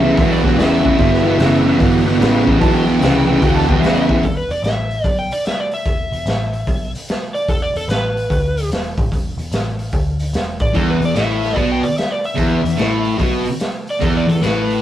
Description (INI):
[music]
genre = blues rock power trio and southern rock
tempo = 147 BPM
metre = 4/4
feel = swing 65% on 8ths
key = E minor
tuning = A4 = 440 Hz
[part]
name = smooth overdriven lead guitar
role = second line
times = 0.0-4.2 s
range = B4 to A5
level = -22 LUFS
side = right 1 dB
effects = none
[part]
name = overdriven tonewheel organ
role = sustained chords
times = 0.0-4.2 s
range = B3 to C5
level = -25 LUFS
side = right 3 dB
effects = slow rotary speaker, chorus vibrato
[part]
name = thick fuzz guitar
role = riff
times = 0.0-4.2, 10.7-14.8 s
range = E2 to C#3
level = -15 LUFS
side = equal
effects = distortion
[part]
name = vintage muted picked electric bass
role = bass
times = 0.0-14.8 s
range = E1 to E2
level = -22 LUFS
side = equal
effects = none
[part]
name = raw garage drum kit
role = drums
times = 0.2-14.8 s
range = hi-hat, kick drum, snare drum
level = -20 LUFS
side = equal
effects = none
[part]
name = overdriven slide guitar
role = melody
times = 4.3-14.8 s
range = A4 to G5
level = -22 LUFS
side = equal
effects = none
[sound]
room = wet studio reverb, RT60 0.6 s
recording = rough rehearsal-room recording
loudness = -14 LUFS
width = side -12 dB against mid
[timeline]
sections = 0.0-4.2 A section; 4.2-14.8 B section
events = lead electric guitar solo 0.0-4.2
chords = 0.0 Em; 4.2 E5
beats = 0.17 0.57 | 0.98 1.38 1.79 2.19 | 2.60 3.01 3.41 3.82 | 4.22 4.63 5.04 5.45 | 5.85 6.26 6.67 7.08 | 7.48 7.89 8.30 8.71 | 9.11 9.52 9.93 10.34 | 10.74 11.15 11.56 11.97 | 12.38 12.79 13.19 13.60 | 14.01 14.42